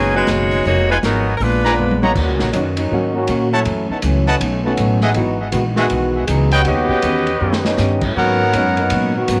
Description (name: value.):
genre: jazz, big band swing.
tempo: 160 BPM.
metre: 4/4.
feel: swing 64% on 8ths.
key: unclear.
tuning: A4 = 439 Hz.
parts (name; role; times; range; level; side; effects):
bright saxophone section; melody; 0.0-2.0 s; F#3 to C#5; -22 LUFS; equal; tape echo.
hollow-body jazz guitar; accompaniment; 0.0-9.4 s; F#2 to Ab4; -26 LUFS; equal; none.
warm trumpet section; stabs; 0.0-9.2 s; B3 to A#5; -22 LUFS; equal; tape echo.
upright bass; bass; 0.0-9.4 s; F1 to A#2; -22 LUFS; equal; none.
warm grand piano; accompaniment; 0.1-8.8 s; F#3 to A#4; -27 LUFS; equal; none.
vintage drum kit; drums; 0.3-9.4 s; crash cymbal, hi-hat, kick drum, ride cymbal, snare drum, toms; -28 LUFS; equal; none.
dark trombone section; second line; 1.6-9.4 s; C#3 to G#4; -23 LUFS; equal; none.
room: light reverb, small room reverb.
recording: none.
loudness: -17 LUFS.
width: mono.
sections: 0.0-2.2 A section; 2.2-9.4 B section.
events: drum fill 1.8-2.2, 7.4-7.8; trombone section solo 2.2-9.4.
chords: 0.0 B69; 0.7 Fm7b5; 1.4 A#7b9; 2.2 D#m7; 3.7 F#m7; 4.4 B7; 5.2 Emaj9; 6.7 D#7alt; 8.2 G#m11.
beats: 0.28 | 0.66 1.03 1.41 1.78 | 2.16 2.53 2.91 3.29 | 3.66 4.04 4.41 4.79 | 5.16 5.54 5.91 6.29 | 6.66 7.04 7.41 7.79 | 8.16 8.54 8.92 9.29.